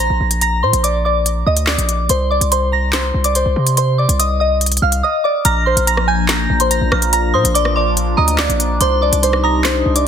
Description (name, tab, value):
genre	hip hop, drill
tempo	143 BPM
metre	4/4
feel	half-time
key	unclear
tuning	A4 = 440 Hz
part	soft synth bell	melody	0.0-10.0 s	C5 to Bb6	-17 LUFS	equal	chorus, phaser
part	hard-hitting 808-style bass	bass	0.0-10.1 s	Bb1 to C3	-17 LUFS	equal	none
part	drill drum kit	drums	0.3-10.1 s	handclaps, hi-hat, rim click, snare drum	-19 LUFS	equal	none
part	sweeping resonant pad	sustained chords	5.4-10.1 s	C3 to Eb4	-22 LUFS	left 2 dB	chorus, phaser
part	metallic FM bell	second line	5.5-10.1 s	Bb5 to G6	-23 LUFS	right 4 dB	chorus, tape echo
room	light reverb, digital ambience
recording	dense, heavily limited modern master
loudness	-13 LUFS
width	side -8 dB against mid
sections	0.0-5.5 A section; 5.5-10.1 B section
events	drums muted 5.0-5.5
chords	0.0 Bb; 2.1 Cmadd9; 5.5 Bb; 8.8 Cmadd9